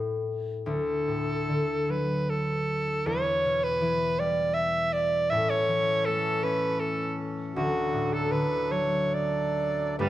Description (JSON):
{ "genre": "celtic folk, Celtic slow air", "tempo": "68-82 BPM", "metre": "3/4", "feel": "rubato", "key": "D major", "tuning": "A4 = 440 Hz", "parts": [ { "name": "concert harp", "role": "accompaniment", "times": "0.0-10.1 s", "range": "G1 to C#4", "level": "-29 LUFS", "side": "left 2 dB", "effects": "none" }, { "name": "warm soprano saxophone", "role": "melody", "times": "0.7-10.1 s", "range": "F#4 to E5", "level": "-26 LUFS", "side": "right 1 dB", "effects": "none" }, { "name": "hand-pumped harmonium", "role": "sustained chords", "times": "5.3-10.1 s", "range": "D3 to A4", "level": "-36 LUFS", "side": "equal", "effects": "none" }, { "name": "bright viola", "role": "second line", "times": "10.0-10.1 s", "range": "G3", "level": "-27 LUFS", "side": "right 4 dB", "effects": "none" } ], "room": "moderate recital hall reverb, RT60 1.4 s", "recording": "none", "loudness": "-25 LUFS", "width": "side -14 dB against mid", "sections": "0.7-10.0 A section", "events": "none", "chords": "0.0 N.C.; 0.7 D; 3.1 Em; 5.3 A; 7.6 D" }